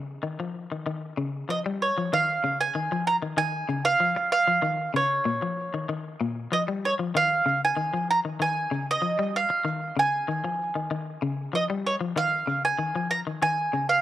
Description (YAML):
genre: afrobeat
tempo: 96 BPM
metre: 4/4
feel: straight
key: Bb dorian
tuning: A4 = 440 Hz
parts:
  - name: clean electric guitar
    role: arpeggios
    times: 0.0-14.0 s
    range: Bb2 to G3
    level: -30 LUFS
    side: left 4 dB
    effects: spring reverb
  - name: bowl-back mandolin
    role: melody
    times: 1.5-14.0 s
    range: Db5 to Bb5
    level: -24 LUFS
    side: right 2 dB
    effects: none
room: studio reverb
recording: dry, close 1970s-style studio recording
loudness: -24 LUFS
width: side -13 dB against mid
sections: 0.0-2.1 A section; 2.1-14.0 B section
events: none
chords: 0.0 Dbadd9; 2.1 Bbm7 (rootless)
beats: 0.23 0.86 1.49 | 2.12 2.75 3.38 4.00 | 4.63 5.26 5.89 6.52 | 7.14 7.77 8.40 9.03 | 9.66 10.28 10.91 11.54 | 12.17 12.79 13.42